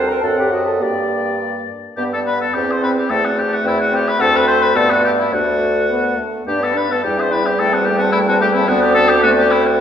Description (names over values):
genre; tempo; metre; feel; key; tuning
quick classical-period movement for wind quintet; 106 BPM; 2/4; rubato; unclear; A4 = 441 Hz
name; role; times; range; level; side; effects
warm oboe; second line; 0.0-9.8 s; E4 to F#5; -18 LUFS; left 3 dB; none
clear French horn; accompaniment; 0.0-9.8 s; A3 to E4; -24 LUFS; left 1 dB; none
warm clarinet; accompaniment; 0.0-9.8 s; G3 to Bb4; -23 LUFS; right 4 dB; none
warm bassoon; bass; 0.0-9.8 s; D2 to G2; -19 LUFS; right 2 dB; none
silver concert flute; melody; 0.1-9.8 s; B4 to Bb5; -23 LUFS; left 6 dB; none
room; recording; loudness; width
wet recital hall reverb, RT60 1.8 s; recorded in a church or concert hall; -14 LUFS; side -8 dB against mid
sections
0.0-2.0 A section; 2.0-9.8 A section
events
none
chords
0.0 D7; 0.8 Gm; 2.0 G; 2.5 C/E; 4.2 D7(no3); 4.8 G; 5.3 D; 6.5 G; 7.0 C/E; 7.6 Am7/E; 8.7 D5